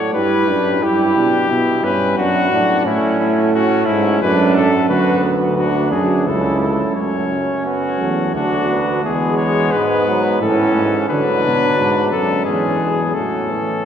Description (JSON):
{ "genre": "classical, imitative canzona for brass ensemble", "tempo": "88 BPM", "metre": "3/4", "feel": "straight", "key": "D major", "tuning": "A4 = 440 Hz", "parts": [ { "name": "warm cornet", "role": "melody", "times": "0.0-13.8 s", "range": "E4 to C#5", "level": "-19 LUFS", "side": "left 4 dB", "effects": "none" }, { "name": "mellow trumpet", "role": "second line", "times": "0.0-13.8 s", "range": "B3 to G4", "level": "-22 LUFS", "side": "right 3 dB", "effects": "none" }, { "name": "clear trombone", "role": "accompaniment", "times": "0.0-13.8 s", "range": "E3 to E4", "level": "-21 LUFS", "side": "right 2 dB", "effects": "none" }, { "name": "mellow euphonium", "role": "bass", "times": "0.0-13.8 s", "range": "C#2 to D3", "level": "-19 LUFS", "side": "right 1 dB", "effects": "none" } ], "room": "wet cathedral reverb, RT60 4.4 s", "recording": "heard from further back in the room", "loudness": "-14 LUFS", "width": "side -8 dB against mid", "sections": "0.0-7.0 A section; 7.0-13.8 B section", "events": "none", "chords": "0.1 G; 0.8 Em/G; 2.2 D/F#; 2.9 A; 4.2 D/F#; 4.9 Bm/D; 6.3 A/C#; 7.0 F#m; 8.3 D; 9.0 E; 10.4 A; 11.1 Bm; 12.5 E; 13.2 A" }